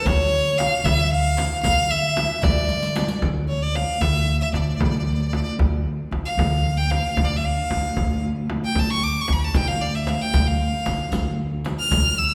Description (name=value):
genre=Persian modal ensemble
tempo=76 BPM (dotted quarters)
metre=6/8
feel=straight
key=D avaz esfahan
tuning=A4 = 445 Hz
part: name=clear violin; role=melody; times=0.0-12.3 s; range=C#5 to F6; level=-26 LUFS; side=equal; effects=none
part: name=breathy mellow ney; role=second line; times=0.0-3.2 s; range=C#5 to G5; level=-32 LUFS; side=equal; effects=none
part: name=upright bass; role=bass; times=0.1-12.3 s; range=D2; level=-26 LUFS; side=equal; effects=none
part: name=frame drum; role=percussion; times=0.1-12.0 s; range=none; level=-28 LUFS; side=equal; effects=none
part: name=riq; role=percussion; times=0.1-3.2, 9.5-12.0 s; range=none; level=-37 LUFS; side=equal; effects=none
part: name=clear studio cello section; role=drone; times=3.2-12.3 s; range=D2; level=-33 LUFS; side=equal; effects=none
room=wet recital hall reverb, RT60 1.6 s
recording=recorded in a church or concert hall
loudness=-22 LUFS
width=mono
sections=0.0-3.2 A section; 3.2-12.3 B section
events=drum fill 2.7-3.2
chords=none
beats=| 0.05 0.84 | 1.64 2.43 | 3.22 4.01 | 4.80 5.60 | 6.39 7.18 | 7.97 8.76 | 9.55 10.34 | 11.12 11.91